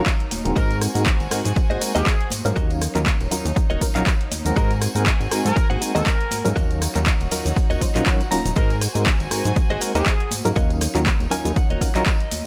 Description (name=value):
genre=filtered disco house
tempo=120 BPM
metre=4/4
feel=swing 56% on 16ths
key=Ab mixolydian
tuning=A4 = 440 Hz
part: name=bright reed electric piano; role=accompaniment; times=0.0-12.0 s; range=Gb3 to F5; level=-28 LUFS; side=equal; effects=overdrive, fast tremolo, phaser, sidechain pumping
part: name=rich studio violin section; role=sustained chords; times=0.0-12.5 s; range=Eb4 to Ab5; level=-35 LUFS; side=equal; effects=sidechain pumping
part: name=direct-recorded clean electric guitar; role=riff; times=0.0-12.5 s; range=Gb4 to Bb5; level=-31 LUFS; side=equal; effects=sidechain pumping
part: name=fat analog bass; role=bass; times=0.0-12.4 s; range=Eb1 to Ab2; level=-27 LUFS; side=equal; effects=sidechain pumping
part: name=electronic kick drum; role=drums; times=0.1-12.2 s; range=none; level=-23 LUFS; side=equal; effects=overdrive
part: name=punchy analog drum machine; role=drums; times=0.1-12.4 s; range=handclaps, hi-hat, rim click, shaker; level=-28 LUFS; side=equal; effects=sidechain pumping on hats, sidechain pumping on perc
part: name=tambourine and congas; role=percussion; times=0.1-12.4 s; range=none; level=-35 LUFS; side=equal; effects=sidechain pumping on perc
part: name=mellow horn section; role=melody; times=0.6-10.3 s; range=Ab4 to Bb4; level=-32 LUFS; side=equal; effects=sidechain pumping, tape echo
room=little or no reverb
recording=none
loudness=-21 LUFS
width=mono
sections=0.0-12.5 A section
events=clean electric guitar fill 7.6-8.6, 11.1-12.5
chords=0.0 Ebm7; 0.6 Ab7; 2.6 Ebm7; 4.6 Ab7; 6.6 Ebm7; 8.6 Ab7; 10.6 Ebm7